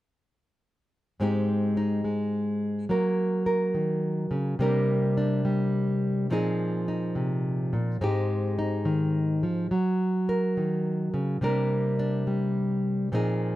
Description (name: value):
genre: solo jazz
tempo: 70 BPM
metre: 4/4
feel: swing 67% on 8ths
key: unclear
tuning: A4 = 440 Hz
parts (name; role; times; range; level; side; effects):
- nylon-string guitar; solo; 1.2-13.6 s; Ab2 to Bb4; -24 LUFS; equal; none
room: light reverb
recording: dry, close 1970s-style studio recording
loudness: -24 LUFS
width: side -15 dB against mid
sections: 1.2-13.6 A section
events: none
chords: 1.2 Abmaj7; 2.9 Gb; 4.6 Csus2; 6.3 Bb9sus4; 8.0 Abmaj7; 9.7 Gb; 11.4 Csus2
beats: | 1.19 2.04 2.89 3.74 | 4.59 5.45 6.30 7.15 | 8.00 8.85 9.70 10.55 | 11.41 12.26 13.11